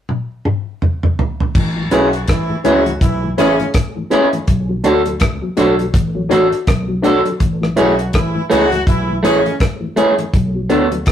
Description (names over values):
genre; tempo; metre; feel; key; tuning
lovers rock reggae; 82 BPM; 4/4; swing 58% on 16ths; A major; A4 = 442 Hz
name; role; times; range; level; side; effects
damped 70s drum kit; drums; 0.1-11.1 s; crash cymbal, hi-hat, kick drum, rim click, toms; -16 LUFS; equal; none
vintage muted fingered electric bass; bass; 1.6-11.1 s; A1 to D2; -21 LUFS; equal; none
mellow tonewheel organ; accompaniment; 1.8-11.0 s; A2 to G#4; -24 LUFS; left 3 dB; overdrive, chorus vibrato, stopped rotary speaker, dub echo
clear horn section; second line; 1.9-9.5 s; C#3 to F#4; -20 LUFS; left 1 dB; none
mellow tine electric piano; accompaniment; 1.9-10.9 s; C#4 to C#5; -18 LUFS; left 1 dB; medium stereo tremolo
electric guitar through a small old amp; stabs; 1.9-10.9 s; A3 to A4; -15 LUFS; right 2 dB; none
room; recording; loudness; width
wet studio reverb, RT60 0.6 s; rough rehearsal-room recording, warm saturation; -13 LUFS; side -10 dB against mid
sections
0.0-1.6 A section; 1.6-11.1 B section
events
drum fill 0.1-1.6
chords
0.0 N.C.; 1.6 Amaj7; 4.5 Bm7; 7.4 Amaj7; 10.3 Bm7